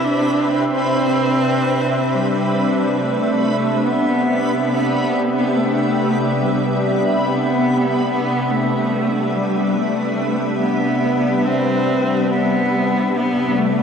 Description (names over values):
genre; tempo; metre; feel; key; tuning
ambient; 71 BPM; 3/4; straight; C major; A4 = 440 Hz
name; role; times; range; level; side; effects
rich cello; melody; 0.0-13.8 s; G3 to D4; -20 LUFS; equal; none
soft additive organ-like pad; sustained chords; 0.0-13.8 s; C3 to E5; -18 LUFS; equal; ensemble chorus, built-in reverb
backwards swelling texture; texture; 0.0-8.1 s; B5; -30 LUFS; right 1 dB; built-in reverb
barky tine electric piano; arpeggios; 3.4-8.1 s; none; barely audible; none; none
room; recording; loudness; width
wet huge ambient reverb, RT60 8.7 s; worn, warbling old tape, cassette tape, warbly pitch drift; -16 LUFS; side -6 dB against mid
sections
0.0-8.1 A section; 8.1-13.8 A section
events
none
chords
0.0 Em7/C; 8.1 Cmaj7